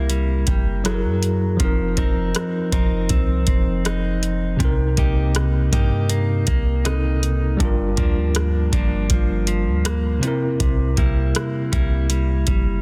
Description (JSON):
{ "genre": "contemporary R&B", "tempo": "80 BPM", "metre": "4/4", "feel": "straight", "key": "unclear", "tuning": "A4 = 442 Hz", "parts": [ { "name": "mellow tine electric piano", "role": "accompaniment", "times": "0.0-12.8 s", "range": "C3 to E5", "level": "-27 LUFS", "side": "equal", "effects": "none" }, { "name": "direct-recorded clean electric guitar", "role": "arpeggios", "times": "0.0-12.8 s", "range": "G2 to Bb4", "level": "-28 LUFS", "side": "equal", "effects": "tape echo" }, { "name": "clean 808-style bass", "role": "bass", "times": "0.0-12.8 s", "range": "F1 to G2", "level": "-24 LUFS", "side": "equal", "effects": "none" }, { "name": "booming analog drum machine", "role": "drums", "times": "0.1-12.7 s", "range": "hi-hat, kick drum, rim click", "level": "-23 LUFS", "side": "equal", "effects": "none" } ], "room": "little or no reverb", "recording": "dense, heavily limited modern master", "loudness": "-20 LUFS", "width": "mono", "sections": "0.0-12.8 A section", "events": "none", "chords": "0.0 C7; 0.8 F#9; 1.6 F7sus4; 4.6 Cm7; 7.6 Gm7; 10.2 C7", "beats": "0.10 0.85 | 1.60 2.35 3.10 3.85 | 4.60 5.35 6.10 6.85 | 7.60 8.35 9.10 9.85 | 10.60 11.35 12.10" }